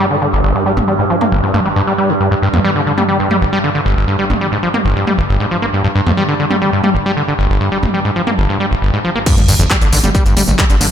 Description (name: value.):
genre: driving peak-time techno.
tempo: 136 BPM.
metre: 4/4.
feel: straight.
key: unclear.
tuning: A4 = 440 Hz.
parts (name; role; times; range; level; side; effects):
overdriven acid bass; riff; 0.0-10.9 s; G1 to Bb3; -14 LUFS; equal; sidechain pumping, ping-pong delay.
overtone-sweeping drone; drone; 0.0-8.4 s; G2; -21 LUFS; right 2 dB; chorus, built-in reverb, sidechain pumping.
techno drum kit; drums; 0.8-10.9 s; crash cymbal, handclaps, hi-hat, tambourine, toms; -19 LUFS; right 1 dB; none.
electronic kick drum; drums; 9.3-10.7 s; none; -14 LUFS; equal; none.
sub drop; sound effects; 9.3-10.9 s; none; -20 LUFS; equal; none.
gritty driven synth bass; bass; 9.4-10.9 s; G1 to Ab1; -16 LUFS; equal; tube saturation, sidechain pumping.
room: moderate lush hall reverb, RT60 1.8 s.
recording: dreamy mix soaked in reverb.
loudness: -12 LUFS.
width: side -8 dB against mid.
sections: 0.0-9.3 A section; 9.3-10.9 B section.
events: filter sweep on acid bass 0.0-9.3; drop 9.3-10.9; impact 9.3-10.9.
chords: 0.0 G5.